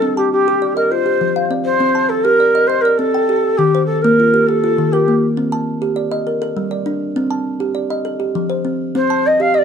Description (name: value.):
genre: southern african traditional, mbira-style interlocking cycle.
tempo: 134 BPM (dotted quarters).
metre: 12/8.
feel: straight.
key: C dorian.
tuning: A4 = 440 Hz.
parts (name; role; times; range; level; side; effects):
mellow Native American-style cedar flute; melody; 0.0-5.3, 9.0-9.6 s; G4 to F5; -14 LUFS; left 1 dB; plate reverb.
kalimba; arpeggios; 0.0-9.6 s; Eb3 to A5; -17 LUFS; right 1 dB; none.
room: moderate studio reverb, RT60 0.6 s.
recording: dark, warm production.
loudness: -14 LUFS.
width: side -7 dB against mid.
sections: 0.0-1.8 A section; 1.8-9.6 B section.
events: none.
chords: 0.0 Cm; 0.9 F5; 1.8 Cm; 3.6 Eb; 5.4 Cm; 6.3 Gm; 7.2 Cm; 8.0 F; 8.9 Cm.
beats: | 0.02 0.47 0.91 1.36 | 1.81 2.25 2.70 3.14 | 3.59 4.04 4.48 4.93 | 5.37 5.82 6.26 6.71 | 7.16 7.60 8.05 8.49 | 8.94 9.39.